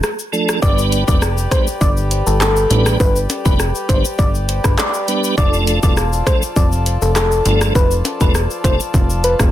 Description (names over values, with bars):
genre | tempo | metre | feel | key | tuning
dancehall | 101 BPM | 4/4 | straight | unclear | A4 = 440 Hz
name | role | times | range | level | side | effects
pop drum kit | drums | 0.0-9.5 s | handclaps, hi-hat, kick drum, rim click, shaker | -17 LUFS | equal | soft clipping on snare
tonewheel organ | accompaniment | 0.3-8.8 s | F3 to B4 | -21 LUFS | right 2 dB | overdrive, chorus vibrato, fast rotary speaker
soft struck synth lead | melody | 0.6-9.3 s | A4 to D5 | -21 LUFS | left 2 dB | chorus, ping-pong delay
pedal harmonium | sustained chords | 0.6-9.5 s | F3 to D5 | -26 LUFS | left 2 dB | sidechain pumping
plucky analog bass | bass | 0.6-9.5 s | E1 to A1 | -17 LUFS | equal | none
tube shaker and timbales | percussion | 0.6-9.5 s | none | -32 LUFS | left 6 dB | none
room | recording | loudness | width
little or no reverb | dense, heavily limited modern master | -13 LUFS | side -13 dB against mid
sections
0.6-9.5 A section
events
break 0.0-0.6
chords
0.0 Dm; 0.6 G; 5.4 Dm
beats
0.03 | 0.62 1.22 1.81 2.41 | 3.00 3.60 4.19 4.78 | 5.38 5.97 6.57 7.16 | 7.75 8.35 8.94